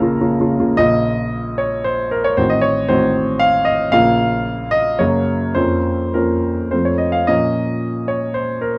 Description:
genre	classical, romantic character piece for solo piano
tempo	100-119 BPM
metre	3/4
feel	rubato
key	Bb minor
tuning	A4 = 440 Hz
part	clear grand piano	solo	0.0-8.8 s	A1 to Bb5	-17 LUFS	equal	none
room	moderate studio reverb, RT60 0.6 s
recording	dark, warm production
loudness	-17 LUFS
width	mono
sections	0.8-8.8 A section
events	none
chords	0.0 Bbm; 2.4 Adim7; 3.9 Bbm; 5.0 Gb; 5.6 Bbm/F; 6.7 F; 7.3 Bbm

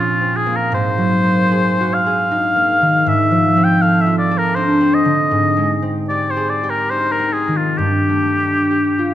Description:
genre	classical, impressionist duo for oboe and harp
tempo	65-83 BPM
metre	3/4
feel	rubato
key	unclear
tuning	A4 = 440 Hz
part	warm oboe	melody	0.0-9.1 s	F4 to G5	-17 LUFS	left 1 dB	none
part	concert harp	accompaniment	0.0-9.1 s	G2 to A4	-16 LUFS	equal	none
room	wet concert hall reverb, RT60 1.7 s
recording	none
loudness	-14 LUFS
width	side -12 dB against mid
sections	0.0-9.1 A section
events	none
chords	0.0 Bbm9; 0.7 Ab9; 3.1 Bbmaj9/Ab; 5.3 Abmaj7; 7.8 Gsus2

